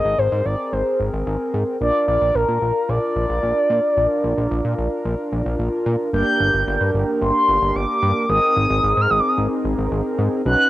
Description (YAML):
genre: synth-pop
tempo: 111 BPM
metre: 4/4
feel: straight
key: unclear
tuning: A4 = 440 Hz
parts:
  - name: mellow horn-like synth lead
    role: melody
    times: 0.0-10.7 s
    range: Bb4 to G6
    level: -19 LUFS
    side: equal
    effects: chorus, phaser
  - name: analog synth brass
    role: accompaniment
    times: 0.0-10.7 s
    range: Bb3 to B4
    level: -23 LUFS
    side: equal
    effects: chorus, cassette tape
  - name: fat analog bass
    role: bass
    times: 0.1-10.6 s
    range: G1 to Bb2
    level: -22 LUFS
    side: equal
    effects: none
room: moderate booth ambience, RT60 0.2 s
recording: home recording on cassette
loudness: -17 LUFS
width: side -15 dB against mid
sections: 0.0-6.1 A section; 6.1-10.7 B section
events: none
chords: 0.0 Abadd9; 1.8 Bb; 6.1 Gm; 8.3 Abadd9